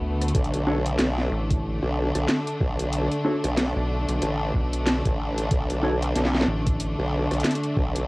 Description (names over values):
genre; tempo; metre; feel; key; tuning
glitch hop; 93 BPM; 4/4; swing 59% on 16ths; B minor; A4 = 439 Hz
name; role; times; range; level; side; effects
rich symphonic string section; sustained chords; 0.0-8.1 s; D3 to D4; -28 LUFS; equal; sidechain pumping, cassette tape
rubbery square bass; bass; 0.0-7.0 s; A1 to D2; -26 LUFS; equal; none
drum and bass drum kit; drums; 0.2-8.1 s; hi-hat, rim click, snare drum; -26 LUFS; equal; cassette tape
formant-sweep wobble bass; bass; 0.3-8.1 s; A1 to B1; -26 LUFS; equal; chorus, overdrive
electronic kick drum; drums; 0.3-7.9 s; none; -25 LUFS; equal; cassette tape
mellow electric guitar; stabs; 0.7-5.9 s; D4 to C#5; -27 LUFS; equal; sidechain pumping, cassette tape, analog delay
room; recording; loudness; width
light reverb; home recording on cassette; -22 LUFS; side -23 dB against mid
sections
0.0-8.1 A section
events
none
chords
0.0 Bm7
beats
| 0.35 0.99 1.64 2.28 | 2.93 3.57 4.22 4.86 | 5.51 6.15 6.80 7.45